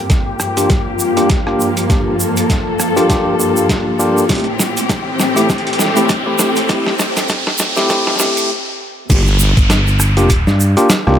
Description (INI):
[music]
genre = glitch hop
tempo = 100 BPM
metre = 4/4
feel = swing 57% on 16ths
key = G dorian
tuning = A4 = 440 Hz
[part]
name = warm chamber string section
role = sustained chords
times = 0.0-8.5 s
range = G2 to A4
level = -20 LUFS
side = left 2 dB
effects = vintage 12-bit sampler grit, sidechain pumping, low-pass filter
[part]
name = riser and downlifter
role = sound effects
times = 1.4-11.2 s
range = none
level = -22 LUFS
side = equal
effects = none
[part]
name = ethereal airy pad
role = texture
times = 0.0-8.5 s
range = Bb3 to G5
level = -22 LUFS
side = left 1 dB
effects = ensemble chorus, built-in reverb, sidechain pumping
[part]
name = boom bap sampler-style drum kit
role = drums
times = 0.1-11.2 s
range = crash cymbal, hi-hat, rim click, snare drum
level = -19 LUFS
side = equal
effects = none
[part]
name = electronic kick drum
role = drums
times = 0.1-10.4 s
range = none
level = -16 LUFS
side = equal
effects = none
[part]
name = egg shaker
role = percussion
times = 0.1-11.0 s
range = none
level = -22 LUFS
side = right 4 dB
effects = none
[part]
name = tine electric piano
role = stabs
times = 0.6-11.2 s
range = A3 to G4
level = -16 LUFS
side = left 1 dB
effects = medium tremolo, sidechain pumping, ping-pong delay
[part]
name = wobble bass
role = bass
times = 9.1-11.2 s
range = G1 to C2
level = -12 LUFS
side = equal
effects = chorus, tube saturation
[part]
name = fingered electric bass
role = bass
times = 9.6-10.7 s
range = G1 to G2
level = -13 LUFS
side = equal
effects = tube saturation
[sound]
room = light reverb, digital ambience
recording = high-pass filter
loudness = -12 LUFS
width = side -9 dB against mid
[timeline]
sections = 0.0-9.1 A section; 9.1-11.2 B section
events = build-up 0.0-9.1; drum fill 0.0-8.5; filter sweep on string section 0.0-9.1; filter sweep 0.0-9.1; riser 1.4-8.5; stop 8.5-9.1; drop 9.1-11.2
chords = 0.0 Gm7; 4.3 Am7; 9.1 Gm7